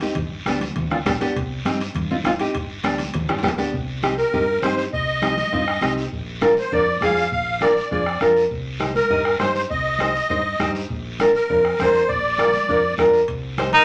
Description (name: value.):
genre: latin, cumbia.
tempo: 201 BPM.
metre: 4/4.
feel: straight.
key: C minor from 3.7 s.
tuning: A4 = 440 Hz.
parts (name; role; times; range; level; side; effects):
nylon-string guitar; accompaniment; 0.0-13.7 s; B3 to Eb5; -23 LUFS; equal; none.
guiro; percussion; 0.0-13.8 s; none; -39 LUFS; equal; none.
timbales; percussion; 0.0-3.7, 13.3-13.8 s; none; -36 LUFS; equal; none.
congas; percussion; 0.1-13.8 s; none; -34 LUFS; equal; none.
fingered electric bass; bass; 0.2-13.8 s; G1 to G2; -33 LUFS; equal; none.
bombo; percussion; 0.2-13.7 s; none; -31 LUFS; equal; none.
musette accordion; melody; 4.2-13.8 s; Bb4 to F5; -23 LUFS; equal; none.
mellow harmonica; second line; 13.7-13.8 s; Eb4; -12 LUFS; equal; none.
room: wet studio reverb, RT60 0.8 s.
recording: none.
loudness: -21 LUFS.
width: mono.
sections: 0.0-3.7 A section; 3.7-13.8 B section.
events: drum fill 3.3-3.7.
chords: 0.2 G; 1.4 Cm; 2.5 G; 3.7 Cm; 6.1 Bb; 8.5 Cm; 10.9 Bb; 13.3 Cm.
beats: | 0.16 0.46 0.76 1.05 | 1.35 1.65 1.95 2.25 | 2.55 2.84 3.14 3.44 | 3.74 4.04 4.33 4.63 | 4.93 5.23 5.53 5.83 | 6.12 6.42 6.72 7.02 | 7.32 7.62 7.91 8.21 | 8.51 8.81 9.11 9.41 | 9.71 10.00 10.30 10.60 | 10.90 11.20 11.50 11.79 | 12.09 12.39 12.69 12.99 | 13.29 13.59.